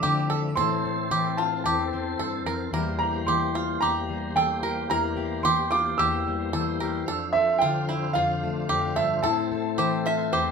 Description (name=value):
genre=acoustic folk duo or small band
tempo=111 BPM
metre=4/4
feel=straight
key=unclear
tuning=A4 = 440 Hz
part: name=warm upright piano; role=melody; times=0.0-10.5 s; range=E5 to E6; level=-26 LUFS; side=right 3 dB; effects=none
part: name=fingerpicked plugged-in steel-string acoustic guitar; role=accompaniment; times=0.0-10.5 s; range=E2 to A4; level=-28 LUFS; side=left 5 dB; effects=none
part: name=tonewheel organ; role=sustained chords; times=0.0-10.5 s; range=F3 to E5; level=-34 LUFS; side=left 1 dB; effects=slow rotary speaker, overdrive, chorus vibrato
part: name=bluegrass banjo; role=arpeggios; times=0.0-10.5 s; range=E4 to Bb4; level=-29 LUFS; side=right 2 dB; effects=none
part: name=metal-body resonator slide guitar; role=second line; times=9.8-10.5 s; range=C5 to E5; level=-28 LUFS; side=right 2 dB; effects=none
room=wet studio reverb, RT60 0.7 s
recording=minimal, uncompressed stereo recording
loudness=-23 LUFS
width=side -5 dB against mid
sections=0.0-10.5 A section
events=none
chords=0.0 Dmadd9/F; 0.6 Edim; 7.1 Dmadd9/F; 9.2 Am